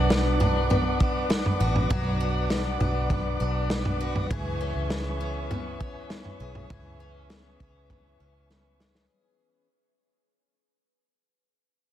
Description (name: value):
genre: dream pop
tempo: 100 BPM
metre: 4/4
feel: straight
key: unclear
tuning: A4 = 444 Hz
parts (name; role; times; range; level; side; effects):
- percussive tonewheel organ; sustained chords; 0.0-9.1 s; B4 to D6; -32 LUFS; right 1 dB; fast rotary speaker
- picked twelve-string acoustic guitar; arpeggios; 0.0-9.7 s; E3 to G#4; -32 LUFS; left 4 dB; lush chorus, tape echo
- vintage muted fingered electric bass; bass; 0.0-9.1 s; A1 to C#2; -29 LUFS; equal; none
- vibraphone with medium mallets; texture; 0.0-2.9 s; B3 to D4; -41 LUFS; right 4 dB; none
- vintage drum kit; drums; 0.1-9.1 s; kick drum, snare drum, toms; -28 LUFS; equal; none
room: light reverb, studio reverb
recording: dense, heavily limited modern master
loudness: -24 LUFS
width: side -11 dB against mid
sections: 0.0-9.1 A section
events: fade-out 0.0-9.1; drum fill 8.5-9.1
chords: 0.0 Bm; 4.3 C#m7